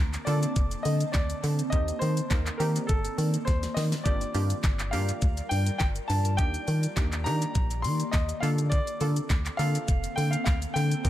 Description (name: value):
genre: dance-pop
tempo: 103 BPM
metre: 4/4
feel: straight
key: unclear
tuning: A4 = 438 Hz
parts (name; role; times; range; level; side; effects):
- warm baby grand piano; melody; 0.0-11.1 s; A4 to C6; -33 LUFS; left 1 dB; tape echo
- glassy wavetable pluck; accompaniment; 0.0-11.1 s; Bb3 to Bb4; -36 LUFS; right 2 dB; chorus, sidechain pumping
- ethereal airy pad; sustained chords; 0.1-11.1 s; D3 to A5; -37 LUFS; equal; ensemble chorus, built-in reverb, sidechain pumping
- organ-like FM bass; bass; 0.0-11.1 s; F1 to Eb3; -28 LUFS; equal; sidechain pumping
- pop drum kit; drums; 0.1-11.1 s; handclaps, hi-hat, kick drum, shaker, snare drum; -28 LUFS; equal; none
room: digital ambience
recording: echo-heavy mix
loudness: -24 LUFS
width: side -13 dB against mid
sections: 0.0-11.1 A section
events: drum fill 3.5-4.1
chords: 0.0 Bbmaj7/D; 1.7 Cm7/Eb; 4.1 Gm7; 6.4 Ebmaj7; 8.4 Bbmaj7/D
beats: 0.56 1.14 | 1.73 2.31 2.89 3.47 | 4.06 4.64 5.22 5.80 | 6.39 6.97 7.55 8.13 | 8.72 9.30 9.88 10.46 | 11.05